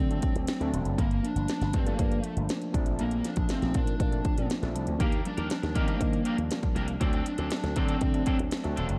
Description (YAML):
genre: polished 1980s jazz-funk pop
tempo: 119 BPM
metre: 4/4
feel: straight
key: unclear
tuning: A4 = 440 Hz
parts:
  - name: lead guitar through a small cranked amp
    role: melody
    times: 0.0-8.4 s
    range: Bb3 to D4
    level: -36 LUFS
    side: equal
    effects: overdrive
  - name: overdriven tine electric piano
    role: accompaniment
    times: 0.0-9.0 s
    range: F3 to A4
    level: -36 LUFS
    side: equal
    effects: analog chorus
  - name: slap bass with an envelope filter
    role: bass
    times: 0.0-9.0 s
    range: Eb1 to Eb3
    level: -34 LUFS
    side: equal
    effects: none
  - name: house drum kit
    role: drums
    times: 0.1-9.0 s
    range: hi-hat, kick drum, snare drum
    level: -32 LUFS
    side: equal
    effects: none
  - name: electric guitar at the edge of break-up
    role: riff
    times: 5.0-8.9 s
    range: F#3 to Bb4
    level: -40 LUFS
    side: equal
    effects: subtle chorus
room: light reverb, digital ambience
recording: dark, warm production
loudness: -28 LUFS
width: mono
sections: 0.0-9.0 A section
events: none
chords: 0.0 D7; 1.0 Gm7; 2.7 Bbmaj9; 5.0 Ebmaj7; 7.0 D7